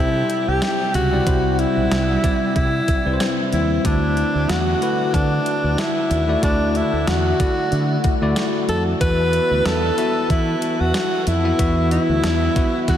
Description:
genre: 1980s-style pop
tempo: 93 BPM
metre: 4/4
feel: swing 55% on 16ths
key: unclear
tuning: A4 = 440 Hz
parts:
  - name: bright alto saxophone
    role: melody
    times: 0.0-13.0 s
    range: D4 to B4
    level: -21 LUFS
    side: equal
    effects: analog delay
  - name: bell-like tine electric piano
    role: accompaniment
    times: 0.0-13.0 s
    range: C3 to E5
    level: -23 LUFS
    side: left 2 dB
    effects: none
  - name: fingered electric bass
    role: bass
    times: 0.0-13.0 s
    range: B1 to E3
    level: -22 LUFS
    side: equal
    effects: none
  - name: clean 12-bit digital drum machine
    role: drums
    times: 0.3-13.0 s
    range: hi-hat, kick drum, snare drum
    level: -24 LUFS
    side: equal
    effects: overdrive
room: wet huge ambient reverb, RT60 7.6 s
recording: dreamy mix soaked in reverb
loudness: -16 LUFS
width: side -10 dB against mid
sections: 0.0-13.0 A section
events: none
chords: 0.0 C; 3.8 Dadd9; 9.0 Esus2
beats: 0.62 | 1.27 1.91 2.56 3.20 | 3.85 4.49 5.14 5.78 | 6.43 7.07 7.72 8.36 | 9.01 9.65 10.30 10.95 | 11.59 12.23 12.88

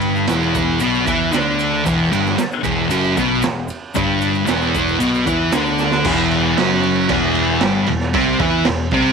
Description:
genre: garage rock duo or trio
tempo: 115 BPM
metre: 4/4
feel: straight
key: E minor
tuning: A4 = 440 Hz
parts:
  - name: thick fuzz guitar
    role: riff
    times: 0.0-9.1 s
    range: E2 to E4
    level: -16 LUFS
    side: equal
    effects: distortion
  - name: growling picked electric bass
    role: bass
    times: 0.0-9.1 s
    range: E1 to E2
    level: -24 LUFS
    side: left 1 dB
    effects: overdrive
  - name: raw garage drum kit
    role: drums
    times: 0.0-9.0 s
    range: crash cymbal, kick drum, ride cymbal, snare drum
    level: -23 LUFS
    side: right 4 dB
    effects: none
  - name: egg shaker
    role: percussion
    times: 0.2-6.0 s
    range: none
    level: -38 LUFS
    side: left 14 dB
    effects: none
room: light reverb, small room ambience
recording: 1960s-style stereo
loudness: -15 LUFS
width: side -5 dB against mid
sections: 0.0-6.0 A section; 6.0-9.1 B section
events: drum fill 5.8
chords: 0.0 Em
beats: 0.29 0.81 1.34 | 1.86 2.38 2.91 3.43 | 3.95 4.48 5.00 5.52 | 6.04 6.57 7.09 7.61 | 8.13 8.66

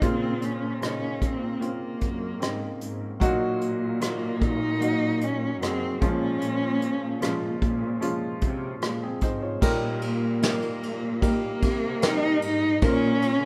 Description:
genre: pop ballad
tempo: 75 BPM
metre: 4/4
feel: straight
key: unclear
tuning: A4 = 440 Hz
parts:
  - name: warm cello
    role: melody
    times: 0.0-13.5 s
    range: Bb3 to Eb4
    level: -30 LUFS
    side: equal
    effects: none
  - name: felt-muted upright piano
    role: accompaniment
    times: 0.0-13.5 s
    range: Bb2 to Db5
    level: -31 LUFS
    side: equal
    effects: none
  - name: muted symphonic cello section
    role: bass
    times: 0.0-13.5 s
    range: Gb2 to Db3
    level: -33 LUFS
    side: equal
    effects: none
  - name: soft brush drum kit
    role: drums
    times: 0.0-13.4 s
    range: crash cymbal, hi-hat, kick drum, ride cymbal, rim click, snare drum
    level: -30 LUFS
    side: equal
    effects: none
room: light reverb, small room ambience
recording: rough home demo mix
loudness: -26 LUFS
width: mono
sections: 0.0-9.6 A section; 9.6-13.5 B section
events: none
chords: 0.0 Bbmadd9; 3.2 Ebm/Bb; 6.0 Db/Bb; 9.6 Eb/Bb; 12.8 Bbmadd9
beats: | 0.02 0.82 1.62 2.42 | 3.22 4.02 4.82 5.62 | 6.42 7.22 8.02 8.82 | 9.62 10.42 11.22 12.02 | 12.82

